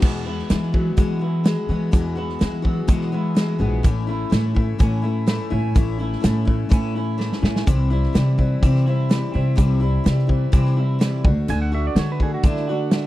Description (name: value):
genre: folk rock and heartland rock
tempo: 126 BPM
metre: 4/4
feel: straight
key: E mixolydian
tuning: A4 = 444 Hz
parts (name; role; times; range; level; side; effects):
- picked steel-string acoustic guitar; accompaniment; 0.0-13.1 s; E2 to F#4; -27 LUFS; left 6 dB; none
- electric guitar through a small old amp; riff; 0.0-13.1 s; E2 to F#4; -30 LUFS; right 1 dB; lush chorus
- upright bass; bass; 0.0-13.1 s; A1 to E3; -21 LUFS; equal; none
- natural country drum kit; drums; 0.0-13.0 s; crash cymbal, hi-hat, kick drum, snare drum; -19 LUFS; equal; none
- pedal steel guitar; second line; 11.5-13.1 s; D4 to G#5; -29 LUFS; right 6 dB; none
room: little or no reverb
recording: dry, close 1970s-style studio recording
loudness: -18 LUFS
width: side -16 dB against mid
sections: 0.0-13.1 A section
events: drum fill 7.2-7.7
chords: 0.0 Eadd9; 3.8 A; 7.7 C; 11.2 D